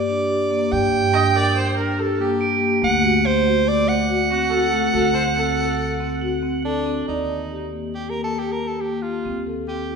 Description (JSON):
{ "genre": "contemporary instrumental, chamber music in an uneven meter", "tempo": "142 BPM", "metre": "5/4", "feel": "straight", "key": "Eb lydian", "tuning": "A4 = 440 Hz", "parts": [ { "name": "clear soprano saxophone", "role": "melody", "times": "0.0-10.0 s", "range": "D4 to G5", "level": "-22 LUFS", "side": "right 4 dB", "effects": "none" }, { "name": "marimba with medium mallets", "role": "arpeggios", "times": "0.0-10.0 s", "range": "A3 to D5", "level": "-22 LUFS", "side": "left 3 dB", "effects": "none" }, { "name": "upright bass", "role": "bass", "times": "0.0-10.0 s", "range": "D2 to G2", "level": "-28 LUFS", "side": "right 3 dB", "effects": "none" }, { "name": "crotales", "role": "texture", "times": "0.0-3.0, 6.2-7.3 s", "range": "D7 to G7", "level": "-30 LUFS", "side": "right 8 dB", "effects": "none" }, { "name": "bright viola", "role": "second line", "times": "1.1-6.2 s", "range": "F#4 to Eb5", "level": "-25 LUFS", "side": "right 3 dB", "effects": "none" } ], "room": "wet recital hall reverb, RT60 1.5 s", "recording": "heard from further back in the room", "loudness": "-18 LUFS", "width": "side -5 dB against mid", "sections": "0.0-7.1 A section; 7.1-10.0 B section", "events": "none", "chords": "0.0 Gm; 2.8 D7; 7.1 Ebmaj7; 9.3 Dm7/Eb (rootless)", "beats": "0.30 | 0.72 1.15 1.57 1.99 2.41 | 2.83 3.25 3.67 4.09 4.51 | 4.94 5.36 5.78 6.21 6.65 | 7.08 7.52 7.95 8.39 8.82 | 9.25 9.68" }